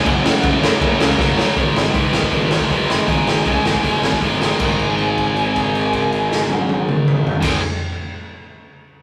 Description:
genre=punk rock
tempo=158 BPM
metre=4/4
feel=straight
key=G# minor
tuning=A4 = 441 Hz
part: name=high-gain lead guitar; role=melody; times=0.0-7.6 s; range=A#4 to G#5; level=-27 LUFS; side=equal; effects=distortion
part: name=sludgy distorted guitar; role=riff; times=0.0-7.6 s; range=F#2 to G#3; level=-21 LUFS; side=equal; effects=overdrive
part: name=fuzz picked electric bass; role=bass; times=0.1-7.6 s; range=F#1 to G#2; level=-25 LUFS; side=equal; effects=overdrive
part: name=raw garage drum kit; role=drums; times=0.1-7.5 s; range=crash cymbal, hi-hat, kick drum, ride cymbal, snare drum, toms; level=-21 LUFS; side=equal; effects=none
room=light reverb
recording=rough rehearsal-room recording, warm saturation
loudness=-17 LUFS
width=mono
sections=0.0-1.6 A section; 1.6-4.6 B section; 4.6-7.7 C section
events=drum fill 1.2-1.6; held note 4.6-7.4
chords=0.0 F#; 1.6 G#m; 4.6 G#5

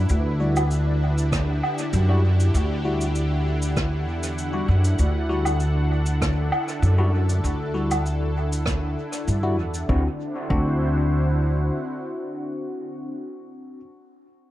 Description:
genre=ambient dub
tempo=98 BPM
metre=4/4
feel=straight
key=unclear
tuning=A4 = 440 Hz
part: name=warm analog pad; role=sustained chords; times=0.0-13.1 s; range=D3 to F#5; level=-29 LUFS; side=equal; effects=chorus, vintage 12-bit sampler grit
part: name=upright bass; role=bass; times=0.0-11.7 s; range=D2 to G2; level=-21 LUFS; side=equal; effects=none
part: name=cabasa, woodblock and rim click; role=drums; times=0.1-9.9 s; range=none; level=-30 LUFS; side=right 1 dB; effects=dub echo
part: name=bell-like tine electric piano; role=stabs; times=0.4-13.8 s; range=G3 to F#4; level=-30 LUFS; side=left 2 dB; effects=phaser, dub echo
part: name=electronic kick drum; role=drums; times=1.3-10.7 s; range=none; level=-26 LUFS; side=equal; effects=none
room=light reverb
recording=echo-heavy mix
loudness=-20 LUFS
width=side -14 dB against mid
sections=0.0-9.9 A section; 9.9-12.3 B section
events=none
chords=0.1 Emadd9/D; 9.9 D7

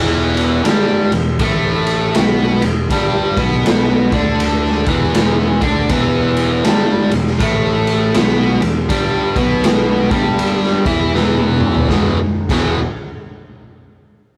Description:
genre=blues rock power trio and southern rock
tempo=80 BPM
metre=4/4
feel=swing 62% on 8ths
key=E minor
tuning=A4 = 439 Hz
part: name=biting overdriven guitar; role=riff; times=0.0-12.8 s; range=E2 to E4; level=-19 LUFS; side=equal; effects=none
part: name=fuzz picked electric bass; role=bass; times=0.0-12.8 s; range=E1 to E2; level=-23 LUFS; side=equal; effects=overdrive
part: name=raw garage drum kit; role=drums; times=0.4-12.6 s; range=crash cymbal, kick drum, ride cymbal, snare drum, toms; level=-19 LUFS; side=equal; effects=none
room=light reverb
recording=rough rehearsal-room recording, warm saturation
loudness=-15 LUFS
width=mono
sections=0.0-11.9 A section; 11.9-14.4 B section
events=drum fill 11.1-11.9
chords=0.0 Em; 11.9 E5

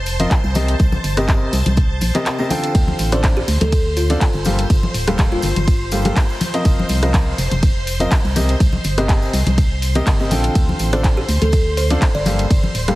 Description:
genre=piano house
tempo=123 BPM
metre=4/4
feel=swing 54% on 16ths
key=C dorian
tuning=A4 = 440 Hz
part: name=string machine, violins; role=sustained chords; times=0.0-13.0 s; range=C5 to C6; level=-28 LUFS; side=equal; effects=ensemble chorus, sidechain pumping
part: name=organ-like FM bass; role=bass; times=0.0-13.0 s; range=D1 to D2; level=-20 LUFS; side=equal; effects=tube saturation, sidechain pumping
part: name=house drum kit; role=drums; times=0.1-13.0 s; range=handclaps, hi-hat, ride cymbal, rim click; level=-25 LUFS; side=equal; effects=small room ambience
part: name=tambourine and congas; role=percussion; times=0.1-13.0 s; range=none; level=-26 LUFS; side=left 2 dB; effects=none
part: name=clear grand piano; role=riff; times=0.2-13.0 s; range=G2 to G5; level=-22 LUFS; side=left 1 dB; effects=sidechain pumping
part: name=electronic kick drum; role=drums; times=0.3-12.6 s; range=none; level=-16 LUFS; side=equal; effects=small room ambience
part: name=kalimba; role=melody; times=3.1-5.7, 10.9-12.3 s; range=F4 to D5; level=-24 LUFS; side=equal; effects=dub echo
room=small room ambience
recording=heavily compressed radio sound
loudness=-14 LUFS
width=side -18 dB against mid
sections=0.0-13.0 A section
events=none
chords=0.0 F7sus4; 0.6 Cm7; 2.7 Dm7; 4.5 Gm9; 6.4 F7sus4; 8.4 Cm7; 10.6 Dm7; 12.3 Gm9

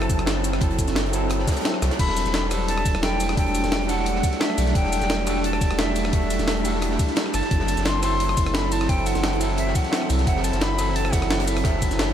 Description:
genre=liquid drum and bass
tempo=174 BPM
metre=4/4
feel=straight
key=unclear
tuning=A4 = 440 Hz
part: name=breathy jazz flute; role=melody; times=0.0-12.1 s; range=E5 to C6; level=-28 LUFS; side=equal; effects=tape echo
part: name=overdriven tine electric piano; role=accompaniment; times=0.0-12.1 s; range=F#3 to A4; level=-28 LUFS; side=left 1 dB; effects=tape echo
part: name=shimmering ambient pad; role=sustained chords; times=0.0-12.1 s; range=E3 to A4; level=-28 LUFS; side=right 2 dB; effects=chorus, built-in reverb, sidechain pumping
part: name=warm sub bass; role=bass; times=0.0-12.1 s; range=E1 to C2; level=-26 LUFS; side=equal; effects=none
part: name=breakbeat sampler-style drum kit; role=drums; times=0.0-12.1 s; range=cabasa, crash cymbal, hi-hat, ride cymbal, rim click, snare drum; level=-28 LUFS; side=equal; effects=small room ambience
part: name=oversized low-tuned drum kit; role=drums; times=0.0-12.1 s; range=hi-hat, snare drum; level=-32 LUFS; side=right 1 dB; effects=high-pass filter on hats, small room ambience, high-pass filter on snare, high-pass filter on room
part: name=electronic kick drum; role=drums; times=0.1-11.9 s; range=none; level=-22 LUFS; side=equal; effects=small room ambience
room=light reverb, small room ambience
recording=none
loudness=-20 LUFS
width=side -9 dB against mid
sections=0.0-12.1 A section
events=none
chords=0.0 F#m7b5; 2.0 Em11; 7.3 F#m7b5

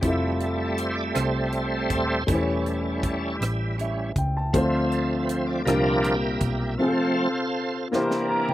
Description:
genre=slow gospel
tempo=53 BPM (dotted quarters)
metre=6/8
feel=straight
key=F major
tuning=A4 = 442 Hz
part: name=warm grand piano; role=accompaniment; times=0.0-8.5 s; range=Bb2 to Bb5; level=-26 LUFS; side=left 2 dB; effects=slapback echo
part: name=bright tonewheel organ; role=sustained chords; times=0.0-8.5 s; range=E3 to F5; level=-26 LUFS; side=right 2 dB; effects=slow rotary speaker, chorus vibrato
part: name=hollow-body short-scale fingered electric bass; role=bass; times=0.0-6.8 s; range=Eb1 to D2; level=-28 LUFS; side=equal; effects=none
part: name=tight funk drum kit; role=drums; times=0.0-8.5 s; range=hi-hat, kick drum, rim click, snare drum, toms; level=-28 LUFS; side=equal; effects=none
part: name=clear horn section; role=melody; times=7.9-8.5 s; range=Bb3 to Bb4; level=-28 LUFS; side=equal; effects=none
room=little or no reverb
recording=recorded outdoors, with no room sound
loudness=-22 LUFS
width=side -14 dB against mid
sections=0.0-8.5 A section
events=tonewheel organ solo 0.0-8.5; grand piano fill 7.9-8.5; drum fill 7.9-8.5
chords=0.0 Fmaj7; 2.3 A7/E; 4.5 Dm7; 5.7 C9sus4; 6.8 F/C; 7.9 C7

